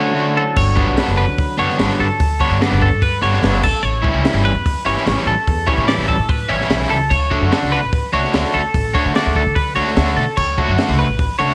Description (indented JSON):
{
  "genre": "math rock and midwest emo",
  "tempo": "147 BPM",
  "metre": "4/4",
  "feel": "straight",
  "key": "D major",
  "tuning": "A4 = 438 Hz",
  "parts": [
    { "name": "electric guitar through a small old amp", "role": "accompaniment", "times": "0.0-2.2 s", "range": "D2 to C#4", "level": "-27 LUFS", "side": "equal", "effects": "spring reverb" },
    { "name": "twelve-string electric guitar", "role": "arpeggios", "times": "0.0-11.5 s", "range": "A4 to D5", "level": "-22 LUFS", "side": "equal", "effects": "none" },
    { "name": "crunchy overdriven guitar", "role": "riff", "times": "0.0-11.5 s", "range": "D3 to F#4", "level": "-22 LUFS", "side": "equal", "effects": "harmonic tremolo" },
    { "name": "upright bass", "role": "bass", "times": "0.6-11.5 s", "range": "F#1 to D3", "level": "-22 LUFS", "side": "equal", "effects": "none" },
    { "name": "compact cocktail drum kit", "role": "drums", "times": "0.6-11.5 s", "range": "crash cymbal, hi-hat, kick drum, snare drum", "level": "-23 LUFS", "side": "equal", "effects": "none" }
  ],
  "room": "light reverb, small room ambience",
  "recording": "none",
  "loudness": "-17 LUFS",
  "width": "mono",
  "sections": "0.6-11.5 A section",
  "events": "break 0.0-0.6",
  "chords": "0.0 Dmaj7; 0.6 Gmaj9#11; 3.6 A9; 7.1 Dmaj7"
}